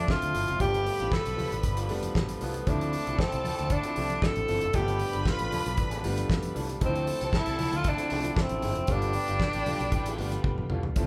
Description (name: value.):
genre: disco.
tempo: 116 BPM.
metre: 4/4.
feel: straight.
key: unclear.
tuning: A4 = 440 Hz.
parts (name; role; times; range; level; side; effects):
clear tenor saxophone; melody; 0.0-11.1 s; B3 to A4; -33 LUFS; equal; none.
clear studio string section; second line; 0.0-11.1 s; G4 to B5; -41 LUFS; equal; none.
warm grand piano; accompaniment; 0.0-11.1 s; F3 to E5; -40 LUFS; equal; none.
muted French horn section; sustained chords; 0.0-11.1 s; D3 to E5; -42 LUFS; equal; none.
fingered electric bass; bass; 0.0-11.1 s; F1 to D2; -36 LUFS; equal; none.
damped 70s drum kit; drums; 0.1-11.1 s; hi-hat, kick drum, snare drum, toms; -33 LUFS; equal; none.
electric guitar through a small old amp; accompaniment; 0.2-11.1 s; F3 to A4; -42 LUFS; equal; none.
congas; percussion; 0.2-11.1 s; none; -43 LUFS; equal; none.
room: moderate large studio reverb, RT60 1.4 s.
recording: band playing live in one room.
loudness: -28 LUFS.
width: mono.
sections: 0.0-11.0 A section.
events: drum fill 10.4-11.0.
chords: 0.0 Dm9; 0.6 G9; 2.7 Dm9; 4.7 G9; 6.8 Dm9; 8.9 G9.